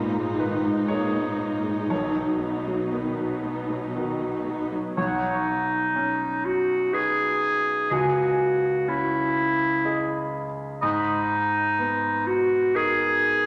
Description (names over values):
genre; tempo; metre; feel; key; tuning
cinematic; 61 BPM; 3/4; uneven beats, rubato; B major; A4 = 441 Hz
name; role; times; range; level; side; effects
bright concert grand piano; accompaniment; 0.0-13.5 s; B1 to B5; -32 LUFS; equal; none
warm symphonic viola section; accompaniment; 0.0-5.0 s; D#3 to D#4; -29 LUFS; equal; none
warm symphonic cello section; bass; 0.0-4.7 s; G#2 to B2; -35 LUFS; equal; none
clear clarinet; second line; 5.0-13.5 s; D#4 to G#4; -24 LUFS; equal; none
mellow small flute group; second line; 5.0-11.3 s; F#5 to B5; -35 LUFS; equal; none
warm oboe; second line; 5.0-11.2 s; C#5 to D#5; -33 LUFS; equal; none
room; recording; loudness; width
wet scoring stage reverb, RT60 2.0 s; none; -25 LUFS; mono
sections
0.0-5.0 A section; 5.0-13.5 A section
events
none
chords
0.0 G#madd9; 1.9 B; 5.0 Badd9; 7.9 C#madd9; 10.8 G#madd9